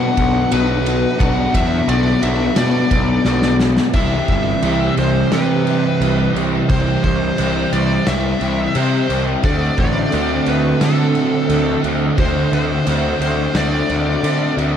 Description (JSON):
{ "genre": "rock, shoegaze and dream pop", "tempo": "88 BPM", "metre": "4/4", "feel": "straight", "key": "unclear", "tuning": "A4 = 443 Hz", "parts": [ { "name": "smooth overdriven lead guitar", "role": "melody", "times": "0.0-14.5 s", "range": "A4 to F#5", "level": "-22 LUFS", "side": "left 1 dB", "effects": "diffuse ambient delay" }, { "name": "crunchy overdriven guitar", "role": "riff", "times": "0.0-14.8 s", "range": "B2 to F#4", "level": "-22 LUFS", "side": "right 6 dB", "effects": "reverse reverb" }, { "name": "crunchy overdriven guitar", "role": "riff", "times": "0.0-3.9 s", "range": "B2 to F#4", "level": "-22 LUFS", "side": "left 1 dB", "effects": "analog chorus" }, { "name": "overdriven semi-hollow guitar", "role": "riff", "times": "0.0-14.8 s", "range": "B2 to G4", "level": "-21 LUFS", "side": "left 7 dB", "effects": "ensemble chorus" }, { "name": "fuzz picked electric bass", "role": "bass", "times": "0.0-14.8 s", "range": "G1 to D3", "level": "-20 LUFS", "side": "equal", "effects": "overdrive" }, { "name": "loose indie drum kit", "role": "drums", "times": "0.2-14.7 s", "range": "crash cymbal, kick drum, ride cymbal, snare drum", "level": "-22 LUFS", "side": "equal", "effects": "none" } ], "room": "moderate lush hall reverb, RT60 2.5 s", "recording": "dreamy mix soaked in reverb, vinyl crackle", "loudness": "-14 LUFS", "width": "side -8 dB against mid", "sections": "0.0-3.9 A section; 3.9-14.8 B section", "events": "drum fill 3.3-3.9", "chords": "0.0 Bm; 3.9 C; 9.4 D7" }